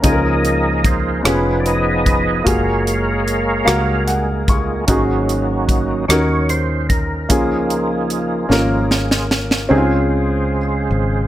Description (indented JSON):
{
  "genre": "slow gospel",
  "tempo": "50 BPM (dotted quarters)",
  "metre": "6/8",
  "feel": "straight",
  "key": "Db major",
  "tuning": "A4 = 439 Hz",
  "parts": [
    { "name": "warm upright piano", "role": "accompaniment", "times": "0.0-11.3 s", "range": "Ab2 to Db6", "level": "-19 LUFS", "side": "equal", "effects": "none" },
    { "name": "overdriven tonewheel organ", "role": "sustained chords", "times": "0.0-11.3 s", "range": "Db3 to F5", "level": "-20 LUFS", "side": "right 2 dB", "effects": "slow rotary speaker, chorus vibrato" },
    { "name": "fingered electric bass", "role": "bass", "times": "0.0-11.3 s", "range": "F1 to Eb2", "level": "-21 LUFS", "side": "equal", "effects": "none" },
    { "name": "crisp fusion drum kit", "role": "drums", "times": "0.0-9.7 s", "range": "hi-hat, kick drum, rim click, snare drum", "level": "-18 LUFS", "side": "equal", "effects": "none" }
  ],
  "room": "light reverb, studio ambience",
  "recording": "none",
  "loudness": "-14 LUFS",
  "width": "side -13 dB against mid",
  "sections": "0.0-9.7 A section; 9.7-11.3 B section",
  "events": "tonewheel organ solo 0.0-9.7; upright piano fill 3.7-4.9; drum fill 8.5-9.7",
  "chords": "0.0 Db69; 1.3 Db7/F; 2.5 Gbmaj9; 4.9 Ab7sus4; 7.3 Db6; 9.7 Dbmaj7"
}